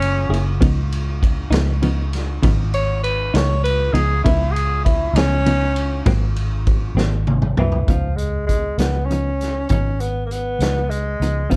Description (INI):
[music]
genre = slow blues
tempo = 66 BPM (dotted quarters)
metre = 12/8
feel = straight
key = Db mixolydian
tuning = A4 = 440 Hz
[part]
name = warm tenor saxophone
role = melody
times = 0.0-11.6 s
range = Fb3 to Db5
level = -24 LUFS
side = equal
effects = none
[part]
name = vintage muted fingered electric bass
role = bass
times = 0.0-11.6 s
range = Gb1 to Db2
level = -23 LUFS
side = equal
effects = none
[part]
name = vintage drum kit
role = drums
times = 0.0-11.6 s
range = hi-hat, kick drum, ride cymbal, snare drum, toms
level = -24 LUFS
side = equal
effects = none
[part]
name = clean electric guitar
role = accompaniment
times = 0.3-11.6 s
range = Ab2 to Ab4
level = -25 LUFS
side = equal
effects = tremolo
[sound]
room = light reverb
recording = dark, warm production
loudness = -19 LUFS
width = mono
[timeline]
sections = 0.0-7.9 A section; 7.9-11.6 B section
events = tenor saxophone solo 0.0-7.9; drum fill 7.0-7.9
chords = 0.0 Gb9; 0.6 Db9; 6.1 Ab9; 7.9 Db9